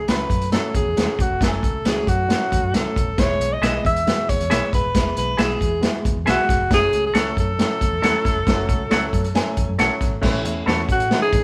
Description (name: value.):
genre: uptempo 1960s-style soul.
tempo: 136 BPM.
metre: 4/4.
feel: straight.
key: unclear.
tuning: A4 = 442 Hz.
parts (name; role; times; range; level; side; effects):
breathy alto saxophone; melody; 0.0-11.4 s; F#4 to E5; -24 LUFS; equal; none.
vintage muted fingered electric bass; bass; 0.0-11.4 s; D#1 to A2; -29 LUFS; equal; none.
dark upright piano; accompaniment; 0.1-11.4 s; E3 to G#5; -30 LUFS; equal; none.
vintage drum kit; drums; 0.1-11.4 s; crash cymbal, hi-hat, kick drum, snare drum; -24 LUFS; equal; none.
semi-hollow electric guitar; stabs; 3.6-10.8 s; E4 to F#5; -25 LUFS; equal; none.
room: moderate stone room reverb, RT60 0.9 s.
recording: band playing live in one room.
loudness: -20 LUFS.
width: mono.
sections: 0.0-10.2 A section; 10.2-11.4 B section.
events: none.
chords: 0.0 F#m; 3.2 E; 6.7 F#m; 10.2 A.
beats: 0.08 0.52 0.96 | 1.41 1.85 2.29 2.73 | 3.18 3.62 4.06 4.50 | 4.94 5.38 5.82 6.26 | 6.71 7.15 7.59 8.03 | 8.47 8.91 9.35 9.79 | 10.22 10.66 11.10.